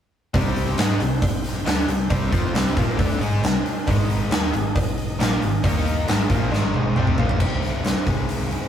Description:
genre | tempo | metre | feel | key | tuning
classic rock | 136 BPM | 4/4 | straight | C minor | A4 = 438 Hz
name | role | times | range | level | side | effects
bright tonewheel organ | sustained chords | 0.3-7.4 s | G3 to Eb5 | -37 LUFS | equal | none
biting overdriven guitar | riff | 0.3-7.4 s | Ab2 to Ab4 | -28 LUFS | equal | none
overdriven semi-hollow guitar | riff | 0.3-8.7 s | Ab2 to Ab4 | -28 LUFS | left 4 dB | none
sludgy distorted guitar | riff | 0.3-8.7 s | Ab2 to Ab4 | -32 LUFS | right 3 dB | none
slap-like FM bass | bass | 0.3-8.6 s | Ab1 to Ab2 | -26 LUFS | equal | none
huge arena drum kit | drums | 0.3-8.6 s | crash cymbal, hi-hat, kick drum, snare drum, toms | -21 LUFS | equal | none
cowbell | percussion | 0.3-7.1 s | none | -36 LUFS | right 2 dB | none
picked twelve-string acoustic guitar | accompaniment | 7.4-8.7 s | C3 to Ab4 | -37 LUFS | right 3 dB | none
room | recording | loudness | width
light reverb | rough rehearsal-room recording | -19 LUFS | side -9 dB against mid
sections
0.3-7.4 A section; 7.4-8.7 B section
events
drum fill 6.5-7.4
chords
0.3 Cm; 3.9 Ab5; 5.6 Eb5; 6.1 Ab5; 7.4 Cmadd9; 8.1 Ab/C

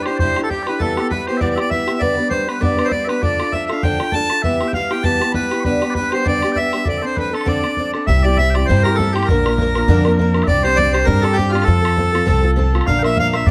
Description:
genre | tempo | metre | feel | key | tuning
celtic folk, Celtic reel | 198 BPM | 4/4 | swing 56% on 8ths | D dorian | A4 = 440 Hz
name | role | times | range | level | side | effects
accordion | melody | 0.0-13.5 s | F4 to A5 | -22 LUFS | equal | slapback echo
mellow small bagpipes | second line | 0.0-13.5 s | F4 to C#6 | -29 LUFS | equal | none
picked acoustic archtop guitar | accompaniment | 0.0-13.5 s | G2 to B4 | -23 LUFS | equal | none
bodhran | percussion | 0.1-13.5 s | none | -25 LUFS | equal | none
upright bass | bass | 8.1-13.5 s | Bb1 to G2 | -19 LUFS | equal | none
room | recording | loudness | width
light reverb | close, detailed microphones | -17 LUFS | mono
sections
0.0-8.1 A section; 8.1-13.5 B section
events
none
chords
0.0 Cadd9; 0.8 Em; 2.0 G; 3.2 Dm; 4.4 Em; 5.7 G; 6.9 Dm7; 8.1 C; 9.3 Bb; 10.5 Csus2; 11.7 F; 12.9 Bb

